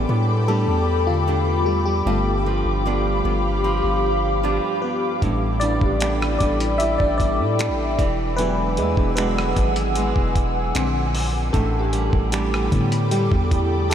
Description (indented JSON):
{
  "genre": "contemporary R&B",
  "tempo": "76 BPM",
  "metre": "4/4",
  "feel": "straight",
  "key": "unclear",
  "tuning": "A4 = 440 Hz",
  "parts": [
    { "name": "FM electric piano", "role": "accompaniment", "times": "0.0-13.9 s", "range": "D3 to E5", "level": "-24 LUFS", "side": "left 2 dB", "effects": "chorus, phaser" },
    { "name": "ethereal airy pad", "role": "sustained chords", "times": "0.0-13.9 s", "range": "G4 to E6", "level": "-25 LUFS", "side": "left 2 dB", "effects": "ensemble chorus, built-in reverb" },
    { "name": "flamenco guitar", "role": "arpeggios", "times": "0.0-13.9 s", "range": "G2 to F#4", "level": "-27 LUFS", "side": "right 5 dB", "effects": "diffuse ambient delay" },
    { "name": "long sustained 808-style bass", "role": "bass", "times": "0.0-13.9 s", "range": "E1 to A2", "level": "-23 LUFS", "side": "equal", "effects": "none" },
    { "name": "dusty soul sampler-style drum kit", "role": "drums", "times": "5.2-13.9 s", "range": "finger snaps, hi-hat, kick drum, rim click", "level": "-25 LUFS", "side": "equal", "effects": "none" },
    { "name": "synth chime", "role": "texture", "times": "5.6-13.9 s", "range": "D4 to A4", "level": "-34 LUFS", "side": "left 1 dB", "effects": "none" }
  ],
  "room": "moderate huge ambient reverb, RT60 7.8 s",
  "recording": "dreamy mix soaked in reverb",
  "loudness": "-18 LUFS",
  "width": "side -9 dB against mid",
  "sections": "0.0-13.9 A section",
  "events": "FM electric piano solo 0.0-13.9",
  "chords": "0.0 A9sus4; 2.1 G7; 5.2 A9sus4; 8.0 E9; 10.8 Bb9; 11.5 A9sus4",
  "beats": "0.49 1.28 | 2.07 2.86 3.65 4.43 | 5.22 6.01 6.80 7.59 | 8.38 9.17 9.96 10.75 | 11.54 12.33 13.12 13.91"
}